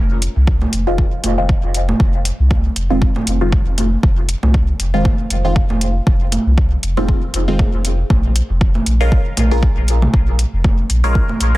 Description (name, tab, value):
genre	dub techno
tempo	118 BPM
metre	4/4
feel	swing 56% on 16ths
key	F minor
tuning	A4 = 441 Hz
part	pure sine sub bass	bass	0.0-11.6 s	F1 to C2	-16 LUFS	equal	tube saturation, sidechain pumping
part	electronic hi-hat	drums	0.2-11.5 s	none	-23 LUFS	left 1 dB	overdrive
part	electronic kick drum	drums	0.5-11.3 s	none	-15 LUFS	equal	overdrive
part	electronic congas and toms	percussion	0.6-11.4 s	none	-24 LUFS	right 2 dB	overdrive, sidechain pumping on perc, sidechain pumping on toms, dub echo
part	filtered dub chord stab	stabs	0.9-11.6 s	Eb3 to Bb4	-22 LUFS	equal	phaser, sidechain pumping, dub echo
room	little or no reverb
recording	dense, heavily limited modern master, vinyl crackle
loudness	-13 LUFS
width	side -18 dB against mid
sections	0.0-11.6 A section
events	none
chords	0.0 Fm7; 8.1 Bbm7